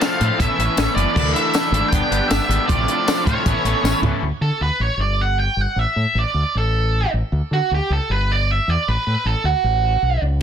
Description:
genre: indie rock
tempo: 155 BPM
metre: 4/4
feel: straight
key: unclear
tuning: A4 = 442 Hz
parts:
  - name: octave-fuzz lead guitar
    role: melody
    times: 0.0-10.2 s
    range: F#4 to G5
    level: -21 LUFS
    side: right 3 dB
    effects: distortion
  - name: raw garage guitar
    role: riff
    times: 0.0-4.2 s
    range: G2 to G4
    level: -23 LUFS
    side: left 6 dB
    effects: overdrive
  - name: twelve-string electric guitar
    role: riff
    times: 0.0-4.2 s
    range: E3 to A4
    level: -26 LUFS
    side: right 7 dB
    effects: ensemble chorus, digital delay
  - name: compact cocktail drum kit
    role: drums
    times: 0.0-4.1 s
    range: crash cymbal, hi-hat, kick drum, snare drum, tambourine, toms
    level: -22 LUFS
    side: left 1 dB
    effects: soft clipping on snare
  - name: tambourine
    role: percussion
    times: 0.0-3.9 s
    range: none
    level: -33 LUFS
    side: left 8 dB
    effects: none
  - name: growling fingered electric bass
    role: bass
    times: 0.2-10.4 s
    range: F#1 to D3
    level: -20 LUFS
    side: equal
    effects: overdrive
room: little or no reverb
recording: dense, heavily limited modern master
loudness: -16 LUFS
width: side -8 dB against mid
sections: 0.0-4.2 A section; 4.2-10.4 B section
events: drum fill 3.8-4.2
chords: 0.4 Aadd9; 1.2 Dsus2; 1.9 G; 2.7 F6/A; 3.5 Aadd9; 4.2 D5; 5.0 Dadd11/G; 5.8 Asus4; 6.5 N.C.; 7.3 Dadd11; 8.1 G6; 8.9 Bm7/A; 9.6 Aadd9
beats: 0.02 0.40 0.78 | 1.16 1.54 1.93 2.31 | 2.69 3.07 3.46 3.84 | 4.23 4.61 5.00 5.39 | 5.77 6.16 6.55 6.94 | 7.32 7.71 8.10 8.49 | 8.87 9.26 9.65 10.03

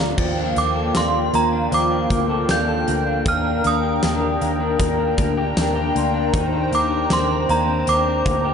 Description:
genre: dream pop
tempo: 78 BPM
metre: 4/4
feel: straight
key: unclear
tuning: A4 = 440 Hz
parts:
  - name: hollow soft pad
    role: sustained chords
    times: 0.0-8.5 s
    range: Bb3 to Bb5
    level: -24 LUFS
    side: right 1 dB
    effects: chorus
  - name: electric guitar through a small old amp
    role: arpeggios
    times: 0.0-8.5 s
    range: Eb3 to A4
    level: -23 LUFS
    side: left 4 dB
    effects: wide subtle chorus, ping-pong delay
  - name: vintage muted picked electric bass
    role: bass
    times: 0.0-8.5 s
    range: D2 to Eb2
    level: -25 LUFS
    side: equal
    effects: none
  - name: huge arena drum kit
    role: drums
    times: 0.2-8.4 s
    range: crash cymbal, hi-hat, kick drum, snare drum, tambourine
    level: -26 LUFS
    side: equal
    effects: none
  - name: large celesta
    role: texture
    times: 0.2-6.7 s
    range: F5 to A6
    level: -37 LUFS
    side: right 2 dB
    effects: none
  - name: synth chime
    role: melody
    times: 0.6-8.5 s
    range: Bb5 to G6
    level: -22 LUFS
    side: right 3 dB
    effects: ensemble chorus, ping-pong delay
room: moderate lush hall reverb, RT60 2.6 s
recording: nothing above 10.8 kHz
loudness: -17 LUFS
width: side -7 dB against mid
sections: 0.2-8.5 A section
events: drum fill 0.0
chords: 0.2 Gm9/Eb; 3.3 Ebmaj7; 6.3 Cm7/Eb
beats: | 0.18 0.95 1.72 2.49 | 3.26 4.03 4.80 5.57 | 6.33 7.10 7.87

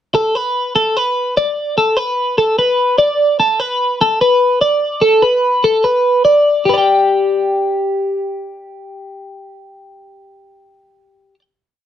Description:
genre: rock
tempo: 148 BPM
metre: 4/4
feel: straight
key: G major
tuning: A4 = 441 Hz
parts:
  - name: twelve-string electric guitar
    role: solo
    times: 0.1-11.4 s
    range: G4 to G5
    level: -12 LUFS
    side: equal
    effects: wide subtle chorus
room: moderate studio reverb, RT60 0.6 s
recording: dark, warm production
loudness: -12 LUFS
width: side -10 dB against mid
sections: 0.2-6.7 A section; 6.7-9.9 final chord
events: none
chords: 0.2 Asus24; 5.0 Asus2; 5.8 Bm; 6.7 G5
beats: | 0.15 0.56 0.96 1.37 | 1.77 2.18 2.58 2.99 | 3.40 3.81 4.21 4.62 | 5.03 5.43 5.84 6.25 | 6.65 7.06 7.47 7.87 | 8.28 8.68 9.08 9.49

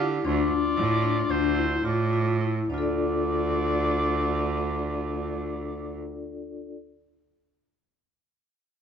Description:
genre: contemporary instrumental, chamber music in an uneven meter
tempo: 210-235 BPM (eighths)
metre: 9/8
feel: straight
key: D minor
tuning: A4 = 439 Hz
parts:
  - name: warm oboe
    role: melody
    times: 0.0-6.0 s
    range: C5 to D5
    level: -31 LUFS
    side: left 1 dB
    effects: none
  - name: clear clarinet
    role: second line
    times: 0.0-6.0 s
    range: F4 to G4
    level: -34 LUFS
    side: left 2 dB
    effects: none
  - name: vibraphone with medium hard mallets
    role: arpeggios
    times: 0.0-6.8 s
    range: D4 to D5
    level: -28 LUFS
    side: left 4 dB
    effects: none
  - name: bright cello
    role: bass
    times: 0.0-6.0 s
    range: D2 to D3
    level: -28 LUFS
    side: right 4 dB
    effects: none
room: moderate recital hall reverb, RT60 1.3 s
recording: dark, warm production, nothing above 7.8 kHz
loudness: -23 LUFS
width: side -7 dB against mid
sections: 0.0-2.7 A section; 2.7-5.2 B section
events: slowing down 0.0-2.7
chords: 0.3 Dm7; 2.7 Dm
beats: 0.00 | 0.26 0.51 0.77 1.03 1.30 1.57 1.85 2.13 2.41 | 2.69 2.98 3.26 3.54 3.83 4.11 4.39 4.67 4.96

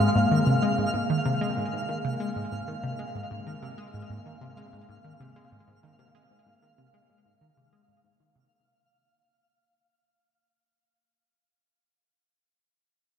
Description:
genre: ambient, sequencer-driven space music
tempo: 95 BPM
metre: 4/4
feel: straight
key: unclear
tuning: A4 = 440 Hz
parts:
  - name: Celtic harp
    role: arpeggios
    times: 0.0-11.3 s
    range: Bb2 to Bb4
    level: -30 LUFS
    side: left 2 dB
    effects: auto-pan, ping-pong delay
  - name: tight sequenced synth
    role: riff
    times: 0.0-8.4 s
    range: Ab2 to Ab3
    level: -28 LUFS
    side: left 1 dB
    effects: chorus, phaser, ping-pong delay
  - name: twinkling granular texture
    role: texture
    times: 0.0-8.5 s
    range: F5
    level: -31 LUFS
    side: right 3 dB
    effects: built-in reverb
room: wet lush hall reverb, RT60 3.3 s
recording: dark, warm production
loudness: -25 LUFS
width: side -8 dB against mid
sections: 0.0-8.5 A section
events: fade-out on synth arpeggio sound 0.0-8.5; fade-out on harp 0.0-8.5; fade-out 0.0-8.5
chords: 0.0 Ab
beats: 0.31 | 0.94 1.57 2.20 2.83 | 3.47 4.10 4.73 5.36 | 5.99 6.62 7.25 7.89

